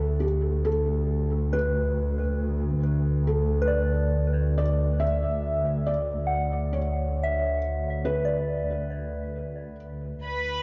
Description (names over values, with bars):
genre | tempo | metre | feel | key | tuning
ambient | 69 BPM | 4/4 | straight | D major | A4 = 438 Hz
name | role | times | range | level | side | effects
felt-muted upright piano | melody | 0.0-9.8 s | G4 to E5 | -33 LUFS | equal | tape echo
soft synth bell | arpeggios | 0.0-10.3 s | B4 to F#5 | -34 LUFS | equal | chorus, phaser, tape echo
dark chamber double bass section | bass | 0.0-10.6 s | D2 | -28 LUFS | equal | none
rich symphonic violin section | texture | 10.2-10.6 s | B4 to B5 | -30 LUFS | equal | none
room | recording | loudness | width
wet spring reverb, RT60 2.5 s | echo-heavy mix, cassette tape, nothing above 7.5 kHz | -26 LUFS | mono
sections
0.0-10.6 A section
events
none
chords
0.0 D69